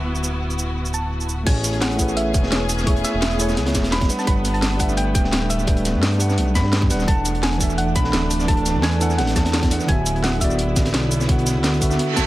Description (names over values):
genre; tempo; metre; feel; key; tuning
liquid drum and bass; 171 BPM; 4/4; straight; unclear; A4 = 444 Hz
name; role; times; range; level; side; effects
soft round pluck; melody; 0.0-12.3 s; C#5 to B5; -28 LUFS; right 1 dB; chorus, dub echo
tine electric piano; accompaniment; 0.0-12.3 s; D3 to A5; -24 LUFS; right 1 dB; medium tremolo, tape echo
dark chamber string section; sustained chords; 0.0-12.3 s; A3 to G#4; -29 LUFS; equal; sidechain pumping
smooth synth bass; bass; 0.0-12.3 s; D1 to G2; -23 LUFS; equal; none
drum and bass drum kit; drums; 0.2-12.2 s; crash cymbal, hi-hat, shaker, snare drum; -26 LUFS; equal; dub echo
crunchy breakbeat drum kit; drums; 1.5-12.3 s; hi-hat, snare drum; -28 LUFS; equal; high-pass filter on hats, high-pass filter on snare, high-pass filter on room, dub echo
electronic kick drum; drums; 1.5-12.2 s; none; -20 LUFS; equal; none
reverse cymbal; sound effects; 12.0-12.3 s; none; -22 LUFS; right 7 dB; none
room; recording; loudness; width
digital ambience; echo-heavy mix; -17 LUFS; side -16 dB against mid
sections
0.0-1.5 A section; 1.5-12.3 B section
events
drop 1.5-12.3; reverse cymbal 12.0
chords
0.0 D69; 1.5 Amaj7; 4.1 Gmaj7; 7.1 D69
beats
| 0.06 0.41 0.76 1.11 | 1.47 1.82 2.17 2.52 | 2.87 3.22 3.57 3.92 | 4.27 4.62 4.97 5.33 | 5.68 6.03 6.38 6.73 | 7.08 7.43 7.78 8.13 | 8.48 8.83 9.19 9.54 | 9.89 10.24 10.59 10.94 | 11.29 11.64 11.99